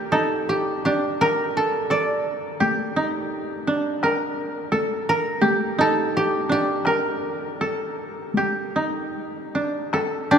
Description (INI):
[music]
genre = japanese traditional, Japanese chamber music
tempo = 75-87 BPM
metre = 4/4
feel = rubato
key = G hirajoshi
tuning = A4 = 440 Hz
[part]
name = koto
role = melody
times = 0.0-10.4 s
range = D4 to Bb5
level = -23 LUFS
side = right 1 dB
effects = none
[part]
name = koto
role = second line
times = 0.0-10.4 s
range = D4 to Bb4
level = -23 LUFS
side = right 1 dB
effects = none
[part]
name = taiko ensemble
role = percussion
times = 1.2-10.1 s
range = none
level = -30 LUFS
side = left 3 dB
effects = none
[sound]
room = wet cathedral reverb, RT60 6.7 s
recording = minimal, uncompressed stereo recording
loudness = -21 LUFS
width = side -7 dB against mid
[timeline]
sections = 0.0-9.9 A section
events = none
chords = none